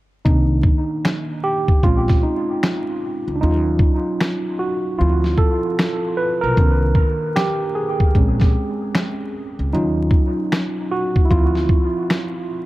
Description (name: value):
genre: lo-fi hip hop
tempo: 76 BPM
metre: 4/4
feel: swing 61% on 16ths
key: C phrygian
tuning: A4 = 440 Hz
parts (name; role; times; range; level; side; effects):
- tine electric piano; accompaniment; 0.2-12.7 s; Eb3 to B4; -20 LUFS; right 1 dB; medium stereo tremolo, cassette tape, low-pass filter, dub echo
- upright bass; bass; 0.3-11.7 s; Bb1 to Eb2; -20 LUFS; equal; none
- lo-fi sampler-style drum kit; drums; 0.3-12.3 s; finger snaps, kick drum, snare drum; -17 LUFS; equal; vintage 12-bit sampler grit
room: light reverb, digital ambience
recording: echo-heavy mix, vinyl crackle, faint mains hum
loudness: -16 LUFS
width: side -17 dB against mid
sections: 0.3-12.7 A section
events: hi-hats muted 0.3-12.7; tine electric piano solo 0.3-12.7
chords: 0.3 Cm9; 1.8 Bbm9; 3.4 Ebm9; 5.0 Dm9; 6.6 Cm9; 8.2 Bbm9; 9.7 Ebm9; 11.3 Dm9